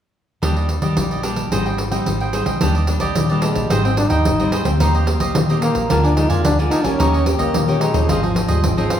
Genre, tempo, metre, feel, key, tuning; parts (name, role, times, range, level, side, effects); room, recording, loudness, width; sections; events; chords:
samba and choro; 110 BPM; 4/4; straight; Eb major; A4 = 440 Hz
cavaquinho; accompaniment; 0.4-9.0 s; D4 to Ab5; -24 LUFS; right 2 dB
nylon-string guitar; accompaniment; 0.4-9.0 s; Ab2 to G4; -23 LUFS; left 2 dB
hollow-body short-scale fingered electric bass; bass; 0.4-8.9 s; Ab1 to Eb3; -20 LUFS; equal
pandeiro; percussion; 0.4-9.0 s; -22 LUFS; equal
breathy trombone; melody; 3.4-9.0 s; F3 to F4; -21 LUFS; equal
wet large studio reverb, RT60 1.3 s; band playing live in one room; -15 LUFS; side -10 dB against mid
0.4-2.6 A section; 2.6-9.0 B section
0.4 Ebmaj7; 1.5 Abmaj7; 2.6 Ebmaj7; 3.7 Abmaj7; 4.8 Eb6; 5.9 Bb7/D; 7.0 Eb7; 8.1 Ab6